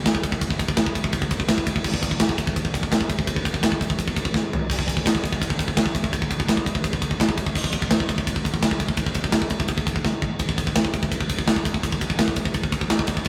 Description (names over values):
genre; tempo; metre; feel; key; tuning
metal; 168 BPM; 4/4; straight; none; none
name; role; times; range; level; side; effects
tight metal drum kit; drums; 0.1-13.3 s; crash cymbal, kick drum, ride cymbal, snare drum, toms; -23 LUFS; equal; none
room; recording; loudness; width
light reverb; rough rehearsal-room recording, warm saturation; -23 LUFS; mono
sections
0.0-10.4 A section; 10.4-13.3 B section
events
drum fill 4.3-4.7, 10.0-10.4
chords
none